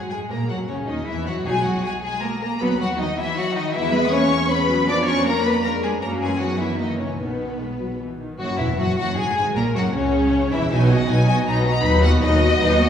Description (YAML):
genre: quick classical-period movement for string orchestra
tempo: 156 BPM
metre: 3/4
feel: rubato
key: B major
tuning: A4 = 440 Hz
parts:
  - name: warm symphonic violin section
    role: second line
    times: 0.0-12.9 s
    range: B3 to D#5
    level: -24 LUFS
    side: left 2 dB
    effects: none
  - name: warm symphonic viola section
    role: accompaniment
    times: 0.0-12.9 s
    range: C#3 to F#4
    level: -25 LUFS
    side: right 1 dB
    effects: none
  - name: dark symphonic cello section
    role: bass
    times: 0.0-12.9 s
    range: C#2 to D4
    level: -24 LUFS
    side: right 1 dB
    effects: none
  - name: dark symphonic double bass section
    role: bass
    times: 0.0-12.9 s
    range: E1 to A#2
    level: -26 LUFS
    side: right 1 dB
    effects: none
  - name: warm symphonic violin section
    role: melody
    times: 0.1-12.9 s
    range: B4 to D#6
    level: -25 LUFS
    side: left 4 dB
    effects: none
room: wet scoring stage reverb, RT60 2.0 s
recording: heard from further back in the room, small room ambience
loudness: -18 LUFS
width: side -8 dB against mid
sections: 0.0-8.4 A section; 8.4-12.9 A section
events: none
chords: 0.3 F#7; 1.5 B; 2.6 B/D#; 3.8 C#m7/E; 4.9 Fdim7; 6.0 F#; 6.4 B/F#; 6.8 F#7; 7.2 B; 8.4 Eadd9; 9.6 F#7; 10.7 B; 11.8 B/D#